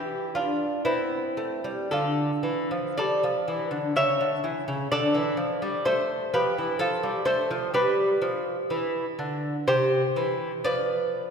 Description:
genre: classical, baroque-style dance for lute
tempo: 62 BPM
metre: 3/4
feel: uneven beats, rubato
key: C major from 7.7 s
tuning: A4 = 441 Hz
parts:
  - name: lute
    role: solo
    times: 0.0-11.3 s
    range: C3 to E5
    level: -24 LUFS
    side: equal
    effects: none
room: wet concert hall reverb, RT60 2.3 s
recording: heard from further back in the room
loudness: -24 LUFS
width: side -6 dB against mid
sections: 0.0-11.3 A section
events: none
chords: 0.0 Am; 1.9 Dm; 4.0 C#m; 4.9 Dm; 7.7 G7; 9.7 C; 10.6 N.C.

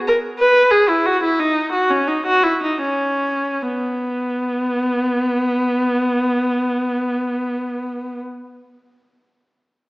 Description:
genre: classical, baroque-style suite movement for unaccompanied viola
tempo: 68-98 BPM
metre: 3/4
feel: rubato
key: B major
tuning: A4 = 440 Hz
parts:
  - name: rich viola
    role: solo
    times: 0.1-8.2 s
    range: B3 to B4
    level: -16 LUFS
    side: equal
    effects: none
room: wet scoring stage reverb, RT60 1.8 s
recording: recorded in a church or concert hall, small speaker sound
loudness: -16 LUFS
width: side -24 dB against mid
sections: 0.0-3.7 A section; 3.7-8.8 B section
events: slowing down 0.0-3.7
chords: none

